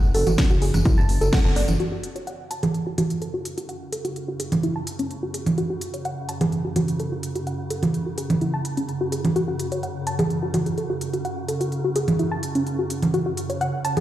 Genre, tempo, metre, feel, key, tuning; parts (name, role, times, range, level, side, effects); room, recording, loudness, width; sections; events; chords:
melodic techno; 127 BPM; 4/4; straight; F# minor; A4 = 440 Hz
dark detuned saw bass; bass; 0.0-1.8 s; F#1; -22 LUFS; equal; sidechain pumping
tambourine; percussion; 0.0-1.8 s; -40 LUFS; left 2 dB
soft round pluck; arpeggios; 0.1-14.0 s; C#4 to A5; -27 LUFS; left 1 dB; chorus, sidechain pumping, digital delay
techno drum kit; drums; 0.1-14.0 s; congas, hi-hat, rim click, snare drum; -25 LUFS; right 2 dB; overdrive
electronic kick drum; drums; 0.4-1.4 s; -19 LUFS; equal; overdrive
swarming drone; drone; 2.8-14.0 s; F#2 to C#3; -30 LUFS; right 1 dB; built-in reverb, sidechain pumping
moderate lush hall reverb, RT60 2.2 s; played on a big sound system in a bare room, large studio reverb; -21 LUFS; side -13 dB against mid
0.0-1.8 A section; 1.8-14.0 B section
filter sweep on synth arpeggio sound 0.0-1.8, 1.8-14.0; band accent 1.3
0.0 F#m